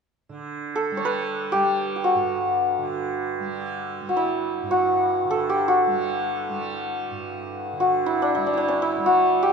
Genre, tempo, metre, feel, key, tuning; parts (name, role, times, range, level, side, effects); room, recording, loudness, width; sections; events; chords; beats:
indian classical, Hindustani; free time; G raga yaman; A4 = 439 Hz
tanpura; drone; 0.3-9.5 s; G2 to G3; -31 LUFS; right 4 dB
santur; melody; 0.8-9.5 s; C#4 to C#5; -21 LUFS; equal
light reverb; minimal, uncompressed stereo recording; -21 LUFS; side -5 dB against mid
0.3-9.5 A section
free time